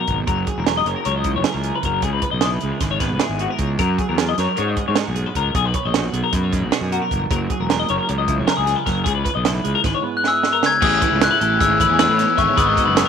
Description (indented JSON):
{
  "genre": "math rock and midwest emo",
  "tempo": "308 BPM (eighths)",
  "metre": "9/8",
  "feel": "straight",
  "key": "B major",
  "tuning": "A4 = 439 Hz",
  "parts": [
    { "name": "twelve-string electric guitar", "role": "accompaniment", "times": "0.0-13.1 s", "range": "G#2 to C#5", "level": "-26 LUFS", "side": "right 10 dB", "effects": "none" },
    { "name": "twelve-string electric guitar", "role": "arpeggios", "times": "0.0-13.1 s", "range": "F#4 to E5", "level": "-23 LUFS", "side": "left 13 dB", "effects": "lush chorus" },
    { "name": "fuzz fingered electric bass", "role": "bass", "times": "0.1-13.0 s", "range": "E1 to A2", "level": "-23 LUFS", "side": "left 1 dB", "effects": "overdrive" },
    { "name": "compact cocktail drum kit", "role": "drums", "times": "0.1-13.1 s", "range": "crash cymbal, hi-hat, kick drum, snare drum", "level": "-22 LUFS", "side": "right 5 dB", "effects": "none" },
    { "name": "glockenspiel with soft plastic mallets", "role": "melody", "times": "10.2-13.1 s", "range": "C#6 to G#6", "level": "-16 LUFS", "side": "left 2 dB", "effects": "none" },
    { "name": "overdriven electric guitar", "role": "riff", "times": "10.8-13.1 s", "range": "G#2 to E4", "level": "-24 LUFS", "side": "left 14 dB", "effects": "none" }
  ],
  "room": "light reverb, small room ambience",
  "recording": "1960s-style stereo with parts hard left and right",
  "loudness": "-16 LUFS",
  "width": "side -7 dB against mid",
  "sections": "0.0-10.8 A section; 10.8-13.1 B section",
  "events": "drum fill 10.2-10.8",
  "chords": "0.3 F#7; 2.0 C#m7; 3.8 F#7; 4.6 Bmaj13; 5.6 Bmaj7; 7.3 F#7; 9.1 C#m7; 10.8 Amaj9; 12.6 G#m9"
}